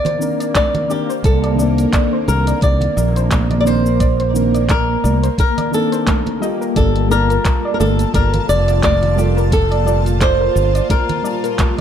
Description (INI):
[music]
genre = sunset chillout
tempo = 87 BPM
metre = 4/4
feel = swing 56% on 16ths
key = C dorian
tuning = A4 = 443 Hz
[part]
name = flamenco guitar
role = melody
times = 0.0-11.8 s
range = G4 to D5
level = -19 LUFS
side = equal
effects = digital delay
[part]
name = shimmering ambient pad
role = sustained chords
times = 0.0-11.8 s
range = Bb2 to A5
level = -23 LUFS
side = right 1 dB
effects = chorus, built-in reverb, phaser
[part]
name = soft round pluck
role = arpeggios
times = 0.0-11.8 s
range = Bb4 to Eb5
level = -26 LUFS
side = left 1 dB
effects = lush chorus, ping-pong delay
[part]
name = deep house drum kit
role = drums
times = 0.1-11.8 s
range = handclaps, hi-hat, shaker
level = -26 LUFS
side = right 1 dB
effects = overdrive, studio reverb
[part]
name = congas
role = percussion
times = 0.1-11.8 s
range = none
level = -26 LUFS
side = right 6 dB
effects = none
[part]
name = soft electric-piano-like synth keys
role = accompaniment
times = 0.2-11.8 s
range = Eb3 to A5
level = -23 LUFS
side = moving between left 6 dB and right 4 dB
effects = chorus, auto-pan
[part]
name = electronic kick drum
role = drums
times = 0.6-11.7 s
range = none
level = -17 LUFS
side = equal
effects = studio reverb
[part]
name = fretless electric bass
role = bass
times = 1.2-10.8 s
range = F1 to C2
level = -17 LUFS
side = equal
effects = analog chorus
[sound]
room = light reverb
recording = dark, warm production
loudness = -13 LUFS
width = side -9 dB against mid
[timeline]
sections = 0.0-11.8 A section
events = none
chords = 0.0 Cm9; 6.8 Gm9